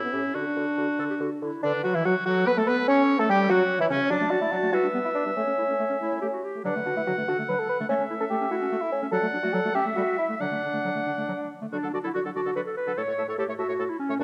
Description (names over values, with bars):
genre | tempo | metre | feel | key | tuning
quick classical-period movement for wind quintet | 96 BPM (dotted quarters) | 6/8 | rubato | D major | A4 = 440 Hz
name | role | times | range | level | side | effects
clear oboe | second line | 0.0-14.2 s | C#4 to A5 | -33 LUFS | equal | none
mellow French horn | accompaniment | 0.0-14.2 s | C#3 to D4 | -35 LUFS | equal | none
mellow hollow silver concert flute | melody | 0.1-14.2 s | A4 to A5 | -37 LUFS | equal | none
clear clarinet | accompaniment | 0.1-14.2 s | D3 to C#5 | -32 LUFS | equal | none
mellow bassoon | bass | 0.1-14.2 s | F#2 to B4 | -30 LUFS | equal | none
room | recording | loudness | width
moderate scoring stage reverb, RT60 1.8 s | none | -26 LUFS | mono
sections
0.0-1.6 A section; 1.6-11.7 B section; 11.7-14.2 B section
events
none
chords
0.3 D; 2.9 A; 4.1 D/F#; 4.7 Em7/G; 5.4 A; 6.7 D; 7.9 A; 9.1 D/F#; 9.7 A7(no3); 10.4 D; 13.0 A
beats
| 0.35 0.99 | 1.64 2.26 | 2.89 3.50 | 4.11 4.73 | 5.37 6.01 | 6.65 7.28 | 7.89 8.51 | 9.12 9.75 | 10.40 11.06 | 11.72 12.35 | 12.97 13.59 | 14.19